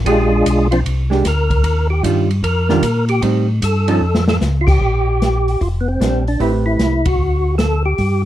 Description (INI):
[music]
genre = soul jazz organ trio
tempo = 151 BPM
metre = 4/4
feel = swing 66% on 8ths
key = Bb major from 4.8 s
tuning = A4 = 437 Hz
[part]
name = mellow tonewheel organ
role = bass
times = 0.0-8.3 s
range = F1 to Bb2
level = -17 LUFS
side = equal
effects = slow rotary speaker
[part]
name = percussive tonewheel organ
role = melody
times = 0.1-8.2 s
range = F3 to Bb4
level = -18 LUFS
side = equal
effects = slow rotary speaker, overdrive, chorus vibrato, plate reverb
[part]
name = vintage hollow-body jazz guitar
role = accompaniment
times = 0.1-7.0 s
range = Eb3 to B4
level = -18 LUFS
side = right 4 dB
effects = none
[part]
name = open jazz drum kit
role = drums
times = 0.1-8.1 s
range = crash cymbal, hi-hat, kick drum, ride cymbal, snare drum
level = -21 LUFS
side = equal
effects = none
[sound]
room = little or no reverb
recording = dark, warm production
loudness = -13 LUFS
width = side -13 dB against mid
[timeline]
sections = 0.0-4.8 A section; 4.8-8.3 B section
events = tonewheel organ solo 0.0-4.8; drum fill 4.0-4.4; band accent 7.0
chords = 0.1 Bb13; 1.6 Ebmaj9; 3.2 Am7b5; 4.0 Dbaug; 4.8 Bb69; 6.4 Am9; 7.2 D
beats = | 0.05 0.45 0.85 1.24 | 1.64 2.04 2.43 2.83 | 3.22 3.62 4.02 4.41 | 4.81 5.21 5.60 6.00 | 6.40 6.79 7.19 7.59 | 7.98